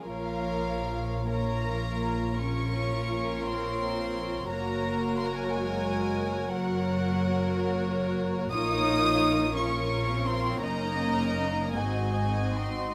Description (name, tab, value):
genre	classical, slow romantic movement for string orchestra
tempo	46-60 BPM (dotted quarters)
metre	12/8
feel	rubato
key	Bb minor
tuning	A4 = 437 Hz
part	warm studio violin section	second line	0.0-12.9 s	Gb4 to Eb5	-36 LUFS	equal	none
part	dark symphonic viola section	accompaniment	0.0-12.9 s	Bb3 to Gb4	-36 LUFS	equal	none
part	warm symphonic cello section	bass	0.0-12.9 s	F3 to Eb4	-35 LUFS	equal	none
part	warm symphonic violin section	melody	0.1-12.9 s	F5 to Eb6	-35 LUFS	equal	none
part	dark symphonic double bass section	bass	0.1-12.9 s	Gb1 to Bb1	-35 LUFS	equal	none
room	moderate recital hall reverb, RT60 1.3 s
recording	close, detailed microphones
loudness	-29 LUFS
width	mono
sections	0.1-12.9 A section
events	none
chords	0.1 Bbm; 4.5 Gb; 8.5 Bbm; 10.6 Ebm7/Gb; 11.7 Ab7